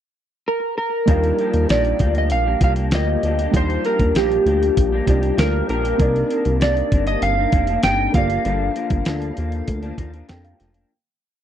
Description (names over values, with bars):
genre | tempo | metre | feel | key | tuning
indie pop, bedroom pop | 98 BPM | 4/4 | straight | Eb major | A4 = 438 Hz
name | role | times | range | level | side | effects
electric slide guitar | melody | 0.5-10.3 s | G4 to G5 | -21 LUFS | right 1 dB | wide subtle chorus, slapback echo
electric guitar through a small old amp | accompaniment | 1.1-10.9 s | G2 to G4 | -26 LUFS | left 4 dB | ensemble chorus, warbly pitch drift
warm upright piano | accompaniment | 1.1-10.9 s | G3 to G5 | -28 LUFS | right 6 dB | cassette tape
chorused synth bass | bass | 1.1-10.8 s | F1 to F2 | -22 LUFS | equal | none
dusty soul sampler-style drum kit | drums | 1.1-10.9 s | hi-hat, kick drum, snare drum | -20 LUFS | equal | none
room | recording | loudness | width
light reverb | dry, close 1970s-style studio recording | -16 LUFS | side -10 dB against mid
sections
0.0-1.1 pickup bar; 1.1-10.9 verse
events
fade-out 8.5-10.9; upright piano fill 10.0-10.9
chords
0.0 N.C.; 1.1 Ebmaj9; 6.0 Cm9; 8.1 Gm7